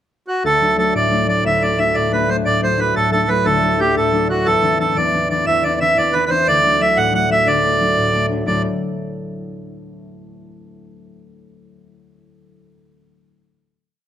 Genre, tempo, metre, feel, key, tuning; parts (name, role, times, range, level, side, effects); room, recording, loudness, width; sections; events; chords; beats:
celtic folk, Celtic slide; 120 BPM (dotted quarters); 12/8; straight; D mixolydian; A4 = 441 Hz
accordion; melody; 0.3-8.6 s; F#4 to F#5; -16 LUFS; right 2 dB; plate reverb
concert harp; accompaniment; 0.4-9.3 s; D2 to A4; -20 LUFS; left 2 dB
wet small room reverb, RT60 0.5 s; -14 LUFS; side -10 dB against mid
0.0-0.4 pickup bar; 0.4-8.5 A section; 8.5-10.5 final chord
0.4 D; 4.5 Cadd9/E; 6.5 D; 8.5 D5
| 0.45 0.95 1.45 1.96 | 2.46 2.96 3.46 3.97 | 4.47 4.97 5.47 5.97 | 6.47 6.97 7.47 7.97 | 8.47 8.97